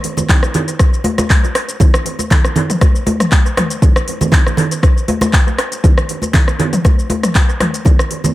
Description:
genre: house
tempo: 119 BPM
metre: 4/4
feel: swing 54% on 16ths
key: none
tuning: none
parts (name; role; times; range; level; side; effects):
- deep house drum kit; drums; 0.0-8.3 s; handclaps, hi-hat, rim click, shaker, toms; -17 LUFS; equal; analog delay
- congas; percussion; 0.2-8.3 s; none; -18 LUFS; right 1 dB; analog delay
- electronic kick drum; drums; 0.3-8.0 s; none; -11 LUFS; equal; overdrive
room: light reverb, digital ambience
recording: echo-heavy mix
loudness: -11 LUFS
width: side -16 dB against mid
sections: 0.0-8.3 A section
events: none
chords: none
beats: 0.29 0.80 1.30 | 1.80 2.31 2.81 3.32 | 3.82 4.33 4.83 5.33 | 5.84 6.34 6.85 7.35 | 7.86

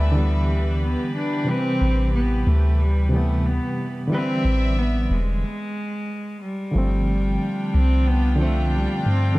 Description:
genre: trip hop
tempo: 91 BPM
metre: 4/4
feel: straight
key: unclear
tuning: A4 = 441 Hz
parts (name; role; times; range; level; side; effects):
- dark cello; melody; 0.0-9.4 s; G3 to D4; -26 LUFS; equal; tape echo
- barky reed electric piano; accompaniment; 0.0-9.4 s; C3 to B4; -26 LUFS; equal; harmonic tremolo, vintage 12-bit sampler grit
- warm studio string section; sustained chords; 0.0-9.4 s; E3 to G5; -31 LUFS; left 1 dB; none
- soft 808-style bass; bass; 0.0-9.4 s; E1 to G2; -20 LUFS; equal; tube saturation
room: studio ambience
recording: dark, warm production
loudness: -19 LUFS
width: side -20 dB against mid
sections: 0.0-6.8 A section; 6.8-9.4 B section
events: filter sweep on reed electric piano 0.0-6.8; break 5.4-6.8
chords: 0.0 Cmaj9 (rootless); 1.5 Am9; 4.1 Cmaj9/A; 5.4 N.C.; 6.8 G7sus4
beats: 0.16 0.82 | 1.48 2.14 2.79 3.45 | 4.11 4.77 5.43 6.09 | 6.75 7.41 8.07 8.73 | 9.39

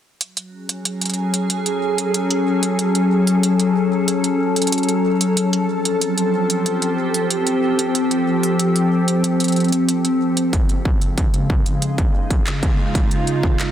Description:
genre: IDM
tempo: 93 BPM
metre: 4/4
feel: straight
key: unclear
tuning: A4 = 440 Hz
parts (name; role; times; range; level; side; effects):
- glassy FM pad; sustained chords; 0.7-13.7 s; C#3 to A4; -18 LUFS; left 1 dB; ensemble chorus, built-in reverb
- industrial drum kit; drums; 0.2-13.7 s; handclaps, hi-hat; -23 LUFS; right 2 dB; none
- electronic kick drum; drums; 10.5-13.6 s; none; -18 LUFS; equal; distortion
room: moderate huge ambient reverb, RT60 6.8 s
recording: dense, heavily limited modern master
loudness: -16 LUFS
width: side -10 dB against mid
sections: 0.2-13.7 A section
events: filter sweep on ambient pad 0.2-13.7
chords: 0.2 F#m; 5.4 F; 10.5 C#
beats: | 0.21 0.85 1.50 2.14 | 2.79 3.43 4.08 4.72 | 5.37 6.01 6.66 7.30 | 7.95 8.60 9.24 9.88 | 10.53 11.18 11.82 12.47 | 13.11

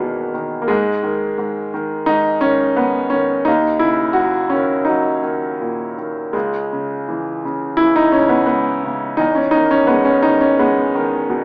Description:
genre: classical, lyrical solo piano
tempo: 86 BPM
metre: 4/4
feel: rubato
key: C# dorian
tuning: A4 = 440 Hz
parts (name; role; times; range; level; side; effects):
- warm concert grand piano; solo; 0.0-11.4 s; C#2 to F#4; -14 LUFS; equal; none
room: moderate recital hall reverb, RT60 1.6 s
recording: small speaker sound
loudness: -14 LUFS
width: side -35 dB against mid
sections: 0.0-11.4 A section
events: none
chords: 0.0 Emaj7; 0.7 G#5; 3.5 D#m7; 6.3 C#m7; 9.2 Emaj7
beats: 0.01 | 0.70 1.39 2.08 2.77 | 3.47 4.17 4.88 5.61 | 6.35 7.08 7.80 8.50 | 9.19 9.89 10.59 11.29

